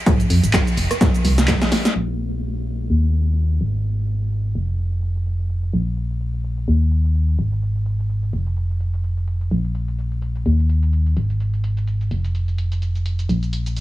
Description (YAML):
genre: piano house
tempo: 127 BPM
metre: 4/4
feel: swing 57% on 16ths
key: unclear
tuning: A4 = 440 Hz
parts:
  - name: organ-like FM bass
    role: bass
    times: 0.1-13.8 s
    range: F1 to F2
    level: -19 LUFS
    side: equal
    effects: sidechain pumping
  - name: breakbeat sampler-style drum kit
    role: drums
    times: 0.1-1.8 s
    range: hi-hat, snare drum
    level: -36 LUFS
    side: equal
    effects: none
  - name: electronic kick drum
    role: drums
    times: 0.1-1.6 s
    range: none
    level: -18 LUFS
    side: equal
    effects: overdrive
  - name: punchy analog drum machine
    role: drums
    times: 0.1-13.8 s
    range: handclaps, hi-hat, rim click, shaker, snare drum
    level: -23 LUFS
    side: equal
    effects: overdrive, low-pass filter on hats, low-pass filter on perc, low-pass filter on snare
room: little or no reverb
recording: low-pass filter, small room ambience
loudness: -18 LUFS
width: side -16 dB against mid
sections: 0.0-2.0 A section; 2.0-13.8 B section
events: drum fill 1.0-2.0; filter sweep on drum 2.0-13.8; filter sweep 2.0-13.8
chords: none